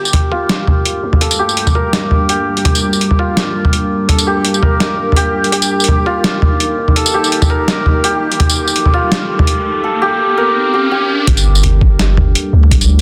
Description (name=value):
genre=half-time drum and bass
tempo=167 BPM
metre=4/4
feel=swing 54% on 16ths, half-time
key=G minor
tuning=A4 = 438 Hz
part: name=deep dark ambient pad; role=sustained chords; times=0.9-13.0 s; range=G3 to A5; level=-23 LUFS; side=equal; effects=chorus, built-in reverb, sidechain pumping
part: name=santur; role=arpeggios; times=0.0-13.0 s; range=F4 to Bb4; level=-19 LUFS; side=equal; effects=low-pass filter, delay
part: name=long sustained 808-style bass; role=bass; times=0.0-13.0 s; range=Eb1 to D2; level=-16 LUFS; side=equal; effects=high-pass filter
part: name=boom bap sampler-style drum kit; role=drums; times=0.1-13.0 s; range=hi-hat, snare drum, tambourine, toms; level=-16 LUFS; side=equal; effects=none
part: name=electronic kick drum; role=drums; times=0.3-9.0, 11.3-12.8 s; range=none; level=-17 LUFS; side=equal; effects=high-pass filter on kick
part: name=riser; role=sound effects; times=8.3-11.3 s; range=none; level=-25 LUFS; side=equal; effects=none
room=moderate lush hall reverb, RT60 2.1 s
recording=dense, heavily limited modern master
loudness=-13 LUFS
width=mono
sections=0.0-11.3 A section; 11.3-13.0 B section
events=build-up 0.0-11.3; riser 8.3-11.3; drop 11.3-13.0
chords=0.0 Gm; 5.5 Eb; 11.3 Gm